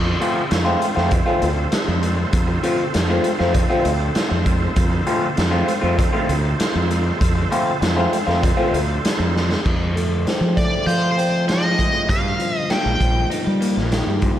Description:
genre	psychedelic rock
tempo	98 BPM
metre	4/4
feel	straight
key	F mixolydian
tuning	A4 = 438 Hz
part	bright tonewheel organ	sustained chords	0.0-9.6 s	C4 to C5	-27 LUFS	right 2 dB	chorus vibrato, fast rotary speaker
part	fuzz fingered electric bass	bass	0.0-14.3 s	Bb1 to G3	-21 LUFS	equal	overdrive
part	electric guitar through a small old amp	riff	0.1-14.4 s	F2 to F4	-22 LUFS	left 1 dB	phaser
part	raw garage drum kit	drums	0.2-14.4 s	crash cymbal, hi-hat, kick drum, snare drum	-22 LUFS	equal	none
part	bluesy overdriven lead guitar	melody	10.6-13.3 s	C5 to G5	-23 LUFS	equal	wah, distortion, tape echo
room	moderate lush hall reverb, RT60 2.2 s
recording	dreamy mix soaked in reverb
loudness	-17 LUFS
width	side -11 dB against mid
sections	0.0-9.6 A section; 9.6-14.4 B section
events	drum fill 9.3-9.6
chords	0.0 F; 12.1 Ebadd9

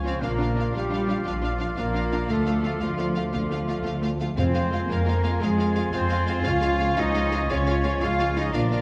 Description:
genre	cinematic, heroic adventure film score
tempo	115 BPM (dotted quarters)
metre	12/8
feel	straight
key	unclear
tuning	A4 = 440 Hz
part	clear clarinet	second line	0.0-8.8 s	F4	-38 LUFS	equal	none
part	clear oboe	second line	0.0-8.8 s	F5 to Bb5	-39 LUFS	equal	none
part	mellow hollow silver concert flute	second line	0.0-8.8 s	C6 to D6	-40 LUFS	equal	none
part	warm symphonic violin section	second line	0.0-8.8 s	F4	-41 LUFS	equal	none
part	rich studio viola section	accompaniment	0.0-8.8 s	Ab3 to D4	-38 LUFS	equal	none
part	clear French horn section	sustained chords	0.0-8.8 s	C4 to F4	-37 LUFS	equal	none
part	dark trombone section	sustained chords	0.0-8.8 s	F3 to Bb3	-38 LUFS	equal	none
part	concert harp	arpeggios	0.0-8.8 s	Bb2 to F6	-40 LUFS	equal	none
part	dark trumpet section	stabs	0.0-8.8 s	F4 to F5	-33 LUFS	equal	none
part	rich symphonic cello section	bass	0.0-8.8 s	F3 to F4	-31 LUFS	equal	none
part	rich symphonic double bass section	bass	0.0-8.8 s	Bb1 to F2	-30 LUFS	equal	none
part	rich studio violin section	melody	0.1-8.8 s	F5	-40 LUFS	equal	none
part	timpani	percussion	4.4-4.9 s	F2	-31 LUFS	equal	none
room	moderate recital hall reverb, RT60 1.8 s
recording	dark, warm production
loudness	-24 LUFS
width	mono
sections	0.0-8.8 A section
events	none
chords	0.2 Bb; 2.3 Dm; 4.4 Fm; 6.5 Db

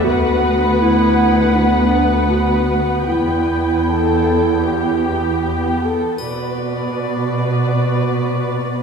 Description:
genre	cinematic, emotional film score for orchestra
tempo	free time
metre	none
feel	none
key	unclear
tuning	A4 = 440 Hz
part	muted symphonic violin section	melody	0.0-5.9 s	F#5 to G5	-22 LUFS	equal	none
part	dark clarinet	second line	0.0-5.8 s	D4 to F#4	-19 LUFS	right 1 dB	none
part	muted symphonic violin section	second line	0.0-8.8 s	G4 to D5	-22 LUFS	left 3 dB	none
part	muted symphonic cello section	bass	0.0-8.8 s	D2 to B2	-19 LUFS	right 2 dB	none
part	muted symphonic viola section	accompaniment	0.1-8.8 s	B3 to F#4	-23 LUFS	equal	none
part	triangle	percussion	6.2-7.6 s	none	-37 LUFS	left 5 dB	none
room	wet scoring stage reverb, RT60 1.8 s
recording	heard from further back in the room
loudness	-14 LUFS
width	side -6 dB against mid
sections	0.0-6.2 A section; 6.2-8.8 B section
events	none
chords	0.1 Bm/D; 3.1 Em; 6.2 Bm

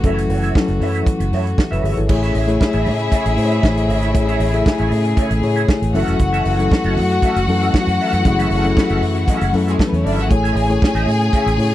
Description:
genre	disco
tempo	117 BPM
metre	4/4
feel	straight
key	A major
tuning	A4 = 439 Hz
part	clean electric guitar	accompaniment	0.0-11.6 s	C#4 to F#5	-27 LUFS	right 6 dB	wah, lush chorus
part	reed electric piano	accompaniment	0.0-11.7 s	F#3 to E5	-20 LUFS	left 3 dB	fast tremolo
part	rich chamber string section	sustained chords	0.0-11.7 s	C#3 to G#4	-24 LUFS	left 1 dB	none
part	vintage muted fingered electric bass	bass	0.0-11.7 s	F1 to A2	-19 LUFS	right 1 dB	none
part	warm soul drum kit	drums	0.0-11.7 s	crash cymbal, hi-hat, kick drum, snare drum	-18 LUFS	right 1 dB	none
part	warm studio violin section	second line	2.1-11.7 s	G#3 to G#5	-22 LUFS	left 3 dB	none
room	little or no reverb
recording	none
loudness	-14 LUFS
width	side -14 dB against mid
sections	0.0-2.1 A section; 2.1-11.7 B section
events	none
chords	0.0 F#m7; 2.1 Amaj7; 5.9 F#m7; 10.3 Amaj7

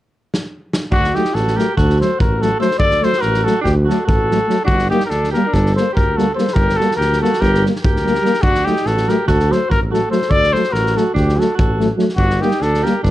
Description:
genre	balkan folk, Balkan brass band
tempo	287 BPM (eighths)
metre	9/8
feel	straight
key	D phrygian dominant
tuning	A4 = 440 Hz
part	loose indie drum kit	percussion	0.3-13.1 s	kick drum, snare drum	-20 LUFS	equal	none
part	mellow trumpet	melody	0.9-13.1 s	F#4 to D5	-18 LUFS	left 1 dB	none
part	breathy alto saxophone	second line	0.9-13.1 s	D4 to A4	-24 LUFS	right 5 dB	analog delay
part	mellow tuba	bass	0.9-13.1 s	G1 to D2	-19 LUFS	equal	none
part	dark euphonium	accompaniment	1.1-12.9 s	F#3 to G3	-22 LUFS	right 4 dB	none
part	mellow French horn	accompaniment	1.1-12.9 s	A3 to Bb3	-22 LUFS	left 5 dB	none
room	light reverb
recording	dark, warm production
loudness	-14 LUFS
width	side -14 dB against mid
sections	0.9-13.1 A section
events	drum fill 0.3-0.9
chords	0.0 N.C.; 0.9 D; 4.7 Gm; 8.4 D; 12.2 Gm

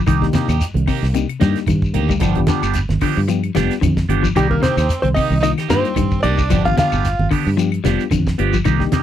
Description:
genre	afrobeat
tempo	112 BPM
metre	4/4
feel	swing 55% on 16ths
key	C minor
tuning	A4 = 440 Hz
part	semi-hollow electric guitar	arpeggios	0.0-9.0 s	C3 to G3	-22 LUFS	left 8 dB	none
part	fingered electric bass	bass	0.0-9.0 s	F1 to G2	-19 LUFS	equal	none
part	electric guitar at the edge of break-up	stabs	0.1-9.0 s	F3 to G4	-24 LUFS	right 14 dB	phaser
part	damped 70s drum kit	drums	0.1-9.0 s	hi-hat, kick drum, snare drum	-23 LUFS	right 1 dB	none
part	claves	percussion	0.1-8.8 s	none	-33 LUFS	left 22 dB	none
part	congas	percussion	0.1-9.0 s	none	-24 LUFS	right 6 dB	none
part	shekere	percussion	0.1-9.0 s	none	-26 LUFS	left 1 dB	none
part	mellow reed electric piano	accompaniment	0.2-9.0 s	Bb3 to G4	-24 LUFS	left 12 dB	fast tremolo
part	hollow-body jazz guitar	melody	4.4-7.3 s	G4 to F5	-20 LUFS	equal	none
part	raspy tenor saxophone	second line	4.4-7.3 s	G3 to F4	-27 LUFS	right 8 dB	none
room	little or no reverb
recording	dry, close 1970s-style studio recording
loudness	-15 LUFS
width	side -11 dB against mid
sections	0.0-9.0 A section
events	none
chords	0.1 Cm7; 2.2 G7; 4.4 Cm7; 6.5 G7

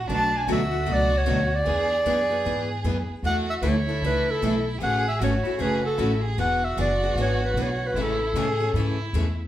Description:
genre	acoustic string swing (jazz manouche)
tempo	153 BPM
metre	4/4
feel	swing 62% on 8ths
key	A major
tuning	A4 = 439 Hz
part	warm violin	second line	0.0-9.4 s	D4 to G#4	-31 LUFS	right 4 dB	none
part	upright bass	bass	0.0-9.5 s	E1 to A2	-27 LUFS	equal	none
part	warm clarinet	melody	0.1-9.1 s	A4 to A5	-25 LUFS	equal	none
part	picked steel-string acoustic guitar	accompaniment	0.1-9.3 s	B2 to A4	-31 LUFS	left 4 dB	none
part	picked steel-string acoustic guitar	accompaniment	0.1-9.3 s	B2 to B4	-31 LUFS	right 3 dB	none
room	wet large studio reverb, RT60 0.8 s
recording	band playing live in one room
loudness	-21 LUFS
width	side -12 dB against mid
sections	0.0-9.5 A section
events	none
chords	0.1 Bm7; 1.7 E7; 3.2 E7sus4; 4.8 A6; 6.4 E7; 8.0 Amaj7

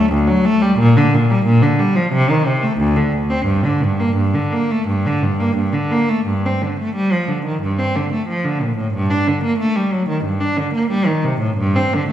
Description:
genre	classical, baroque-style suite movement for unaccompanied cello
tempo	89 BPM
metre	4/4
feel	uneven beats, rubato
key	G minor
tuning	A4 = 440 Hz
part	clear cello	solo	0.0-12.1 s	D2 to D4	-15 LUFS	equal	none
room	wet recital hall reverb, RT60 1.4 s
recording	heard from further back in the room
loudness	-15 LUFS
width	side -11 dB against mid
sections	0.0-6.3 A section; 6.3-12.1 B section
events	none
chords	none

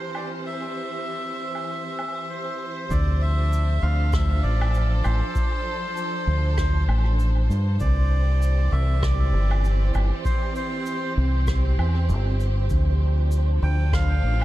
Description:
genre	ambient dub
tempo	98 BPM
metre	4/4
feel	swing 58% on 16ths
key	D minor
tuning	A4 = 443 Hz
part	melodica	melody	0.0-14.4 s	C5 to G5	-31 LUFS	equal	dub echo
part	rich studio string section	sustained chords	0.0-14.4 s	E3 to C5	-33 LUFS	right 2 dB	none
part	woodblock, shaker and rim click	drums	0.1-14.4 s	none	-37 LUFS	right 1 dB	dub echo
part	deep dub fingered electric bass	bass	2.9-14.4 s	G1 to G2	-20 LUFS	equal	none
part	electronic kick drum	drums	2.9-14.1 s	none	-26 LUFS	equal	none
part	wind-like tuned noise texture	texture	3.6-14.4 s	C5	-38 LUFS	right 4 dB	built-in reverb
room	little or no reverb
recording	none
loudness	-20 LUFS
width	side -15 dB against mid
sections	0.0-2.9 A section; 2.9-14.4 B section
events	none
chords	0.0 C; 2.9 Dm7; 7.8 C; 12.7 Dm7

